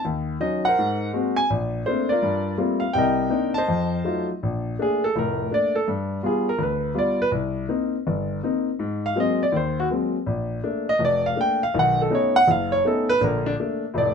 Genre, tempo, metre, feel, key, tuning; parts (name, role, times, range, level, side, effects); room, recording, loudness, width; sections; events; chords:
solo jazz; 164 BPM; 4/4; swing 65% on 8ths; Bb major; A4 = 439 Hz
warm grand piano; solo; 0.0-14.1 s; F1 to A5; -20 LUFS; left 1 dB
light reverb; minimal, uncompressed stereo recording; -20 LUFS; side -6 dB against mid
0.0-4.4 A section; 4.4-14.1 B section
grand piano solo 4.4-14.1
0.0 Ebm7; 0.8 Ab9; 1.5 Bbmaj9; 2.2 Gm11; 2.9 Cm9; 3.7 F7b9; 4.4 Bbmaj7; 5.9 G7; 7.3 Cm7; 8.8 Ab9; 10.3 Bbmaj7; 11.7 B9; 13.2 Bbmaj7